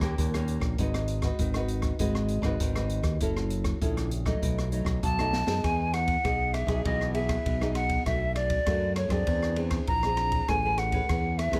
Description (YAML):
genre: samba and choro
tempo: 99 BPM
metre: 4/4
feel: straight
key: E major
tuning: A4 = 441 Hz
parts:
  - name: nylon-string guitar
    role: accompaniment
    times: 0.0-11.6 s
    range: F#2 to B4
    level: -35 LUFS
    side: equal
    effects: none
  - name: modern bright fingered electric bass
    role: bass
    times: 0.0-11.6 s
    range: F#1 to F#2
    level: -32 LUFS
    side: equal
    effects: none
  - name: open jazz drum kit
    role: drums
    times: 0.0-11.6 s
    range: hi-hat, kick drum, ride cymbal, rim click, snare drum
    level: -34 LUFS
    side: equal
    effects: none
  - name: hollow concert flute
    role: melody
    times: 5.0-11.6 s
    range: C#5 to A#5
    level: -31 LUFS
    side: equal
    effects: none
room: light reverb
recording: none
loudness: -28 LUFS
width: mono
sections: 0.0-5.6 A section; 5.6-11.6 B section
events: drum fill 5.3-5.6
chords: 0.0 D#7; 0.8 G#m7; 3.2 F#m7; 4.4 B7; 5.6 Emaj7; 8.1 Bm7; 9.3 Eaug7; 10.5 Amaj9